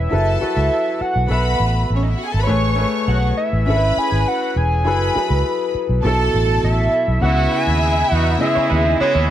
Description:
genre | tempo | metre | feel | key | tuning
lush 1970s-style soul | 101 BPM | 4/4 | straight | C# minor | A4 = 438 Hz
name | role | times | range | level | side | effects
hollow square lead | melody | 0.0-9.3 s | C#5 to G#5 | -21 LUFS | equal | chorus
clear baby grand piano | accompaniment | 0.0-9.3 s | B2 to E5 | -22 LUFS | left 2 dB | none
vintage muted fingered electric bass | bass | 0.0-9.3 s | E1 to E2 | -18 LUFS | equal | none
warm studio string section | second line | 0.1-9.2 s | C#4 to C#6 | -23 LUFS | right 2 dB | none
clear horn section | stabs | 7.2-9.3 s | G#3 to G#4 | -22 LUFS | right 1 dB | none
electric guitar through a small old amp | riff | 8.6-9.3 s | B3 to C#5 | -25 LUFS | right 9 dB | spring reverb
room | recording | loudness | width
light reverb, small room reverb | none | -15 LUFS | side -11 dB against mid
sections
0.0-7.2 A section; 7.2-9.3 B section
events
none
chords
0.1 F#m11; 1.3 B7sus4; 2.5 Amaj9; 3.7 C#m7/G#; 4.9 F#m11; 6.0 B7sus4; 7.2 C#m9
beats
| 0.12 0.71 1.30 1.89 | 2.49 3.08 3.67 4.26 | 4.86 5.45 6.04 6.63 | 7.22 7.82 8.41 9.00

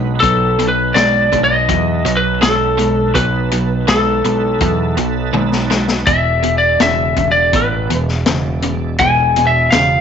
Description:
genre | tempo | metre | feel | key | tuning
blues rock power trio and southern rock | 82 BPM | 4/4 | straight | B mixolydian | A4 = 440 Hz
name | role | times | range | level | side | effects
overdriven tonewheel organ | sustained chords | 0.0-10.0 s | G#3 to A5 | -29 LUFS | right 12 dB | slow rotary speaker, chorus vibrato
cranked stack guitar | riff | 0.0-10.0 s | E2 to G#3 | -19 LUFS | right 1 dB | overdrive
growling picked electric bass | bass | 0.0-10.0 s | E1 to E2 | -20 LUFS | equal | overdrive
lightly driven lead guitar | melody | 0.2-10.0 s | A4 to G#5 | -14 LUFS | left 1 dB | none
vintage drum kit | drums | 0.2-9.9 s | hi-hat, kick drum, snare drum, toms | -20 LUFS | left 4 dB | none
room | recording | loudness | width
light reverb, studio reverb | 1960s-style stereo, nothing above 7.9 kHz | -12 LUFS | side -7 dB against mid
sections
0.0-10.0 A section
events
drum fill 5.3-6.1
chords
0.0 B7; 6.1 E7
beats
| 0.22 0.95 1.69 2.42 | 3.15 3.88 4.61 5.34 | 6.08 6.81 7.54 8.27 | 9.00 9.73

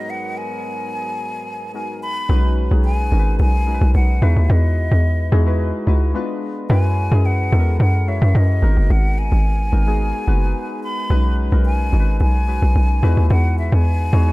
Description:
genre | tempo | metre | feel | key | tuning
amapiano | 109 BPM | 4/4 | straight | B major | A4 = 444 Hz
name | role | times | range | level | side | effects
breathy mellow silver concert flute | melody | 0.0-14.3 s | D#5 to B5 | -26 LUFS | left 1 dB | tape echo
soft electric-piano-like synth keys | accompaniment | 0.0-14.3 s | G#3 to C#5 | -26 LUFS | left 2 dB | chorus
warm brass ensemble | sustained chords | 0.0-2.3 s | G#2 to A#4 | -33 LUFS | right 1 dB | none
hollow log drum bass | bass | 2.3-14.3 s | F#1 to F#2 | -15 LUFS | equal | none
room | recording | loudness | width
studio reverb | dark, warm production | -15 LUFS | side -20 dB against mid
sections
0.0-2.3 A section; 2.3-14.3 B section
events
drop 2.3-14.3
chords
0.0 G#m9; 2.3 B69; 4.2 Emaj9; 6.1 Fdim7; 6.7 F#9sus4; 8.6 G#m9; 11.1 B69; 13.0 Emaj9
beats
| 0.09 0.64 1.19 1.74 | 2.29 2.84 3.40 3.94 | 4.50 5.05 5.60 6.15 | 6.70 7.25 7.80 8.35 | 8.90 9.45 10.00 10.55 | 11.10 11.65 12.20 12.75 | 13.30 13.85

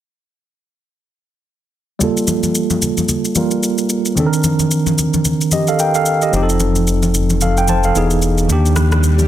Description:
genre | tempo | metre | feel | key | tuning
amapiano | 111 BPM | 4/4 | swing 58% on 16ths | G minor | A4 = 440 Hz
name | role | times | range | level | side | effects
bright tine electric piano | accompaniment | 2.0-9.3 s | Eb3 to A5 | -16 LUFS | right 2 dB | medium stereo tremolo, low-pass filter
electronic shaker and rim click | drums | 2.0-9.3 s | none | -22 LUFS | left 1 dB | none
congas | percussion | 2.0-9.3 s | none | -22 LUFS | left 4 dB | none
sub bass with octave | bass | 6.3-9.3 s | E1 to Eb2 | -15 LUFS | left 1 dB | none
swell | sound effects | 8.4-9.3 s | none | -28 LUFS | equal | none
room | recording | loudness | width
light reverb | dense, heavily limited modern master | -13 LUFS | side -12 dB against mid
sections
2.0-9.3 A section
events
filter sweep on tine electric piano 2.0-9.3; swell 8.4-9.3; kick muted 8.5-9.3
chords
2.0 Gm9; 4.2 Cm9; 6.3 F7; 8.0 Emaj7; 8.5 Ebmaj7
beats
| 2.01 2.55 3.09 3.63 | 4.17 4.71 5.25 5.79 | 6.33 6.87 7.41 7.95 | 8.49 9.04

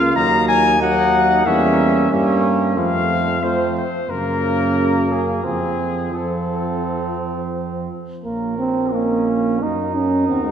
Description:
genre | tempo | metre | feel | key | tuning
classical, brass quintet | 84-93 BPM | 4/4 | rubato | Bb minor | A4 = 436 Hz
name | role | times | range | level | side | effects
mellow cornet | melody | 0.0-10.5 s | Ab4 to Bb5 | -21 LUFS | left 5 dB | none
mellow trumpet | second line | 0.0-10.5 s | Bb3 to Bb4 | -23 LUFS | right 4 dB | none
clear French horn | accompaniment | 0.0-10.5 s | F3 to Bb4 | -25 LUFS | equal | none
mellow trombone | accompaniment | 0.0-10.5 s | Db3 to Eb4 | -22 LUFS | right 3 dB | none
mellow bass trombone | bass | 0.0-10.5 s | Bb1 to G2 | -24 LUFS | right 1 dB | none
room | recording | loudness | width
wet scoring stage reverb, RT60 2.0 s | none | -16 LUFS | side -8 dB against mid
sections
0.0-8.3 A section; 8.3-10.5 A section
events
none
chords
0.2 Ebm; 1.5 Edim7; 2.8 F; 4.1 Gb; 5.4 F; 8.3 Bbm; 9.6 Ebm/Gb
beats
| 0.15 0.81 1.46 2.11 | 2.77 3.42 4.09 4.76 | 5.45 6.14 6.85 7.55 | 8.26 8.94 9.62 10.29

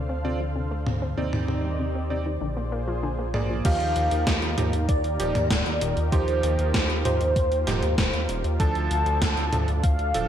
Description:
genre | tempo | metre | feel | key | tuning
synthwave | 97 BPM | 4/4 | straight | unclear | A4 = 440 Hz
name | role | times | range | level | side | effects
lush unison pad | sustained chords | 0.0-10.3 s | D3 to F5 | -33 LUFS | equal | chorus, sidechain pumping
analog pluck | arpeggios | 0.0-3.6 s | C3 to C4 | -33 LUFS | left 3 dB | chorus, ping-pong delay
chorused synth bass | bass | 0.0-10.3 s | D1 to Eb2 | -27 LUFS | equal | none
clear electric grand piano | stabs | 0.2-10.3 s | F3 to D5 | -32 LUFS | right 6 dB | ping-pong delay
gated 80s digital drum machine | drums | 0.9-10.3 s | crash cymbal, hi-hat, snare drum, toms | -28 LUFS | equal | gated reverb, gated reverb snare
FM electric piano with soft pad layer | second line | 3.6-10.3 s | C5 to A5 | -36 LUFS | right 1 dB | none
electronic kick drum | drums | 3.6-10.0 s | none | -24 LUFS | equal | none
warm velvety synth lead | melody | 3.7-10.3 s | C5 to A5 | -28 LUFS | equal | chorus, ping-pong delay
room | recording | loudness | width
light reverb, digital ambience | none | -22 LUFS | side -10 dB against mid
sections
0.0-3.6 A section; 3.6-10.3 B section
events
filter sweep on synth arpeggio sound 0.0-3.6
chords
0.0 Dm7; 1.2 Cmadd9/Eb; 2.4 Bb7; 3.6 Ebadd9; 8.6 Dm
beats
0.56 | 1.18 1.79 2.41 3.03 | 3.65 4.27 4.89 5.50 | 6.12 6.74 7.36 7.98 | 8.60 9.22 9.84

